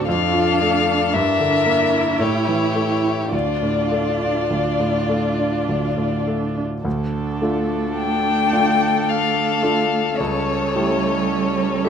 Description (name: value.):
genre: classical, slow romantic movement for piano quintet.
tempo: 50-57 BPM.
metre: 3/4.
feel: rubato.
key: D minor.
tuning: A4 = 440 Hz.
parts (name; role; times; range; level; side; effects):
warm violin; melody; 0.0-11.9 s; C#5 to G5; -21 LUFS; left 8 dB; none.
dark cello; second line; 0.0-11.9 s; G3 to F4; -27 LUFS; right 7 dB; none.
rich violin; second line; 0.0-11.9 s; F4 to Bb4; -28 LUFS; left 2 dB; none.
clear concert grand piano; accompaniment; 0.0-11.9 s; C#2 to G4; -22 LUFS; equal; none.
warm viola; accompaniment; 0.0-11.9 s; C#4 to E4; -26 LUFS; right 6 dB; none.
room: moderate recital hall reverb, RT60 1.6 s.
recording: dark, warm production.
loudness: -17 LUFS.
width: side -7 dB against mid.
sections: 0.0-6.9 A section; 6.9-11.9 B section.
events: none.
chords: 0.1 Dm/F; 1.1 Em7b5/G; 2.2 A7; 3.3 Dm; 10.2 A7/C#.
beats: | 0.07 1.13 2.20 | 3.33 4.51 5.68 | 6.86 7.97 9.08 | 10.20 11.31.